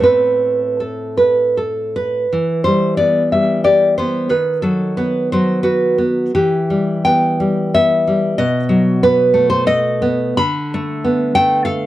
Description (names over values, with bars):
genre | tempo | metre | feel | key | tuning
romantic piece for solo classical guitar | 77-96 BPM | 3/4 | rubato | E minor | A4 = 440 Hz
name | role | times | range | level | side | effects
nylon-string guitar | solo | 0.0-11.9 s | A2 to B5 | -13 LUFS | equal | none
room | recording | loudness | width
light reverb | worn, warbling old tape, cassette tape, warbly pitch drift | -13 LUFS | side -14 dB against mid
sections
0.0-2.3 A section; 2.3-11.9 B section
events
none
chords
0.0 Am; 2.3 Em; 4.3 B/D#; 6.3 Em; 8.4 B7; 10.4 Bm7b5/D